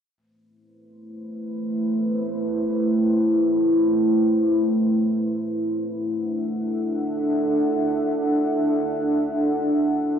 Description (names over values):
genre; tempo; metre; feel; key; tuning
drum and bass; free time; none; none; A dorian; A4 = 442 Hz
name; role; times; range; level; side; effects
deep dark ambient pad; sustained chords; 1.2-10.2 s; A3 to F#5; -20 LUFS; equal; chorus, built-in reverb
room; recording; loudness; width
wet huge ambient reverb, RT60 6.1 s; played on a big sound system in a bare room, large studio reverb; -20 LUFS; side -8 dB against mid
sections
0.2-10.2 A section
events
none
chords
0.2 Am; 5.7 D